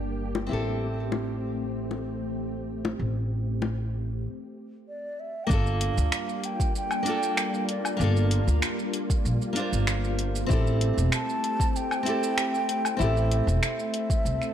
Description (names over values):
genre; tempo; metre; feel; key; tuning
sunset chillout; 96 BPM; 4/4; straight; G dorian; A4 = 440 Hz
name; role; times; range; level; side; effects
nylon-string guitar; accompaniment; 0.0-14.5 s; Bb3 to C5; -32 LUFS; moving between left 6 dB and right 4 dB; auto-pan, digital delay
soft string machine; sustained chords; 0.0-14.5 s; G3 to A4; -33 LUFS; equal; ensemble chorus
upright bass; bass; 0.0-14.4 s; E1 to D2; -27 LUFS; equal; none
bongos; percussion; 0.3-3.8 s; none; -33 LUFS; left 6 dB; none
breathy mellow wooden flute; melody; 4.9-14.5 s; D5 to A5; -31 LUFS; equal; digital delay
deep house drum kit; drums; 5.5-14.5 s; finger snaps, hi-hat, shaker, woodblock; -31 LUFS; equal; overdrive, low-pass filter on perc, low-pass filter on hats, low-pass filter on snare, low-pass filter on room
electronic kick drum; drums; 5.5-14.2 s; none; -25 LUFS; equal; overdrive
room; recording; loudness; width
light reverb, small room ambience; dark, warm production; -24 LUFS; side -10 dB against mid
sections
0.0-5.5 A section; 5.5-14.5 B section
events
break 4.2-5.5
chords
0.0 Gm7; 0.5 Am7; 5.5 Gm7; 10.5 Am7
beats
| 0.50 1.12 1.75 2.38 | 3.00 3.62 4.25 4.88 | 5.50 6.12 6.75 7.38 | 8.00 8.62 9.25 9.88 | 10.50 11.12 11.75 12.38 | 13.00 13.62 14.25